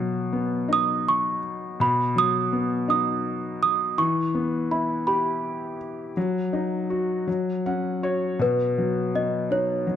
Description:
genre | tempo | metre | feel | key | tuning
children's music, lullaby | 55 BPM (dotted quarters) | 6/8 | rubato | B major | A4 = 438 Hz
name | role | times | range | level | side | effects
felt-muted upright piano | accompaniment | 0.0-10.0 s | B2 to F#5 | -25 LUFS | left 2 dB | none
small celesta | melody | 0.7-10.0 s | B4 to D#6 | -23 LUFS | right 3 dB | none
room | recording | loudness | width
moderate recital hall reverb, RT60 1.4 s | dark, warm production | -22 LUFS | side -9 dB against mid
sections
0.0-8.4 A section; 8.4-10.0 B section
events
felt piano fill 7.3-8.4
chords
0.0 B; 4.0 Em; 6.2 B/F#; 7.3 F#5; 8.4 B

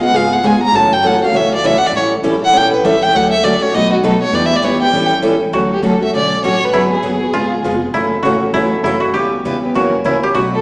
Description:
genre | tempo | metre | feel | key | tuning
acoustic string swing (jazz manouche) | 200 BPM | 4/4 | swing 59% on 8ths | D major | A4 = 443 Hz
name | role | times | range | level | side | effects
warm violin | melody | 0.0-7.8, 10.5-10.6 s | F#4 to Bb5 | -14 LUFS | equal | none
picked plugged-in steel-string acoustic guitar | accompaniment | 0.0-10.6 s | B2 to A4 | -16 LUFS | equal | none
picked steel-string acoustic guitar | accompaniment | 0.1-10.5 s | B2 to B4 | -19 LUFS | equal | none
upright bass | bass | 0.1-10.6 s | E#1 to F#2 | -29 LUFS | equal | none
koto | second line | 5.5-10.6 s | E4 to G4 | -18 LUFS | equal | none
room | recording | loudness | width
wet recital hall reverb, RT60 1.8 s | recorded in a church or concert hall, small speaker sound | -11 LUFS | side -28 dB against mid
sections
0.0-5.5 A section; 5.5-10.6 B section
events
violin solo 0.0-5.5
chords
0.0 C#7; 0.7 F#m7; 1.9 A7; 3.1 Dmaj7; 3.7 B7; 4.3 Em7; 4.9 A7; 5.5 Dmaj7; 6.7 G#m7b5; 7.3 C#7; 7.9 F#m7; 9.1 C#m7b5; 9.7 F#7

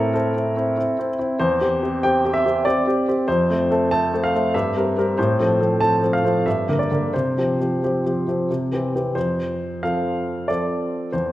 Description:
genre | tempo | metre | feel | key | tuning
classical-period piano sonatina | 87-97 BPM | 3/4 | rubato | F major | A4 = 441 Hz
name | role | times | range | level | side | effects
clear grand piano | solo | 0.0-11.3 s | E2 to A5 | -18 LUFS | equal | none
room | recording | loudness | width
wet recital hall reverb, RT60 1.7 s | none | -18 LUFS | side -15 dB against mid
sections
0.0-9.2 A section; 9.2-11.3 B section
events
none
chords
0.0 Am; 1.4 C/E; 3.3 F; 4.5 C7/G; 5.2 F/A; 6.5 Gm; 7.1 Csus4; 8.5 C; 9.2 F

